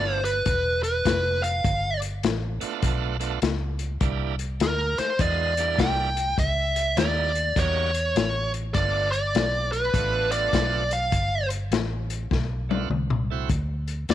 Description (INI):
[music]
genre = electric blues shuffle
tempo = 101 BPM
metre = 4/4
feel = swing 64% on 8ths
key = G mixolydian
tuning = A4 = 440 Hz
[part]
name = smooth overdriven lead guitar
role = melody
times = 0.0-14.1 s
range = Bb4 to G5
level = -24 LUFS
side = right 1 dB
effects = none
[part]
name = bright tonewheel organ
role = accompaniment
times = 0.0-13.5 s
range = G3 to F#4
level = -32 LUFS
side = right 13 dB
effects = slow rotary speaker, overdrive
[part]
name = vintage muted fingered electric bass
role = bass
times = 0.0-14.1 s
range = E1 to E2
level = -28 LUFS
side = equal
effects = none
[part]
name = vintage drum kit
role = drums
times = 0.3-14.1 s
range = hi-hat, kick drum, snare drum, toms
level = -27 LUFS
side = left 4 dB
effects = none
[sound]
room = little or no reverb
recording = 1960s-style stereo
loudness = -22 LUFS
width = side -12 dB against mid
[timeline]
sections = 0.0-14.1 A section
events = drum fill 12.3-13.5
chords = 0.0 G9; 4.0 C9; 6.4 C#dim7; 8.8 G9; 13.5 N.C.